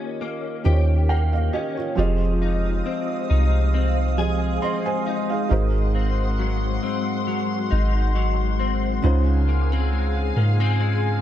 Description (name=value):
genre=R&B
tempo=68 BPM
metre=4/4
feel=swing 54% on 16ths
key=F minor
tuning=A4 = 441 Hz
part: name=felt-muted upright piano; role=accompaniment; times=0.0-11.2 s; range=Db3 to C6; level=-28 LUFS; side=right 6 dB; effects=none
part: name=direct-recorded clean electric guitar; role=arpeggios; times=0.0-11.2 s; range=Ab2 to Ab4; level=-29 LUFS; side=left 7 dB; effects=ensemble chorus, tape echo
part: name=soft 808-style bass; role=bass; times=0.7-11.2 s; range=F1 to Ab2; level=-20 LUFS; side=equal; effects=none
part: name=glassy FM pad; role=sustained chords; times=2.3-11.2 s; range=Ab3 to Eb6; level=-27 LUFS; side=left 2 dB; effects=ensemble chorus, built-in reverb
room=little or no reverb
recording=none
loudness=-19 LUFS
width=side -11 dB against mid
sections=0.0-11.2 A section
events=none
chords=0.0 Eb7; 2.0 Fm7; 5.5 Ab7; 9.0 Dbmaj7